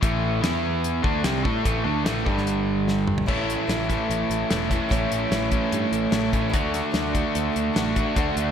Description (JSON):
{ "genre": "classic rock", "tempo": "147 BPM", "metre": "4/4", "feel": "straight", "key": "A mixolydian", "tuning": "A4 = 444 Hz", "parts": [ { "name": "crunchy overdriven guitar", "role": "riff", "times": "0.0-8.5 s", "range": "G2 to A4", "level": "-27 LUFS", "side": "left 8 dB", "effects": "slapback echo" }, { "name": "distorted electric guitar", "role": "riff", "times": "0.0-8.5 s", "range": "G2 to A4", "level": "-26 LUFS", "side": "right 8 dB", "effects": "distortion" }, { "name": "modern bright picked electric bass", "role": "bass", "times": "0.0-8.5 s", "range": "E1 to A2", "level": "-29 LUFS", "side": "equal", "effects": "none" }, { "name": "damped 70s drum kit", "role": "drums", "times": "0.0-8.5 s", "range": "crash cymbal, hi-hat, kick drum, snare drum, toms", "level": "-27 LUFS", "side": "equal", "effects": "none" }, { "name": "picked old ladder-braced acoustic guitar", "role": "accompaniment", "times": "3.3-8.5 s", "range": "A2 to F#4", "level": "-33 LUFS", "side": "left 1 dB", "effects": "slapback echo" } ], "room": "moderate lush hall reverb, RT60 1.7 s, small room ambience", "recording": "big arena sound", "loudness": "-21 LUFS", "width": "side -8 dB against mid", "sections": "0.0-3.3 A section; 3.3-8.5 B section", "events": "drum fill 2.9-3.3", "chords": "0.4 E5; 1.0 A5; 2.3 G5; 3.3 A; 6.5 D", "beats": "| 0.02 0.43 0.83 1.24 | 1.65 2.05 2.46 2.87 | 3.27 3.68 4.09 4.50 | 4.90 5.31 5.72 6.13 | 6.54 6.94 7.35 7.76 | 8.17" }